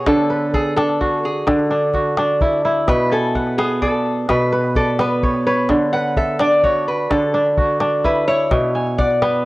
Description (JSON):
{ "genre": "west african traditional, West African string and xylophone music", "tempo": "85 BPM (dotted quarters)", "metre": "12/8", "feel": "straight", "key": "D lydian", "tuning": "A4 = 440 Hz", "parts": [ { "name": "lap resonator guitar", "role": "melody", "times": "0.0-9.4 s", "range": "G#4 to F#5", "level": "-20 LUFS", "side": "left 1 dB", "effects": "tape echo" }, { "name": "kora", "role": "arpeggios", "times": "0.0-9.5 s", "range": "B2 to G#5", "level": "-17 LUFS", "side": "right 1 dB", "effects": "cassette tape" }, { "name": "calabash", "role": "percussion", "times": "0.1-9.4 s", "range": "none", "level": "-22 LUFS", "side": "left 1 dB", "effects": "none" } ], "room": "light reverb, small room ambience", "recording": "home recording on cassette", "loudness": "-15 LUFS", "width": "side -19 dB against mid", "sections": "0.0-9.5 A section", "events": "resonator guitar played with a steel bar solo 0.0-9.5", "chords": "0.1 D; 2.9 Bm; 5.7 D; 8.5 Bm" }